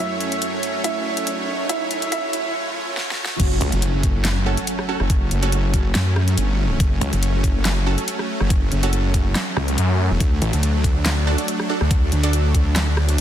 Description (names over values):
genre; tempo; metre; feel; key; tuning
heavy wobble dubstep; 141 BPM; 4/4; swing 54% on 16ths, half-time; F# minor; A4 = 440 Hz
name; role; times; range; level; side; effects
clear grand piano; melody; 0.0-2.5 s; E4 to E5; -25 LUFS; right 4 dB; tape echo
supersaw pad; sustained chords; 0.0-13.2 s; F#2 to C#5; -27 LUFS; right 1 dB; sidechain pumping
riser and impact; sound effects; 0.1-5.1 s; none; -31 LUFS; equal; none
dubstep drum kit; drums; 0.2-13.2 s; crash cymbal, handclaps, hi-hat, rim click, snare drum; -25 LUFS; left 1 dB; overdrive
wobble bass; bass; 3.4-13.2 s; E1 to F#2; -19 LUFS; equal; chorus, overdrive
electronic kick drum; drums; 3.4-12.6 s; none; -19 LUFS; equal; overdrive
snarling distorted saw bass; bass; 3.6-3.7, 7.0-10.5 s; A1 to F#2; -19 LUFS; equal; distortion, overdrive
orchestra-hit-like synth stab; stabs; 4.5-12.3 s; C#4 to A4; -27 LUFS; right 4 dB; built-in reverb, tape echo
room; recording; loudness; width
digital ambience; dense, heavily limited modern master, high-pass filter; -18 LUFS; side -10 dB against mid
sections
0.0-3.4 A section; 3.4-13.2 B section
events
build-up 0.0-3.4; riser 0.1-3.4; break 2.5-3.4; drum fill 3.0-3.4; drop 3.4-13.2; impact 3.4-5.1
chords
0.0 F#m; 10.2 D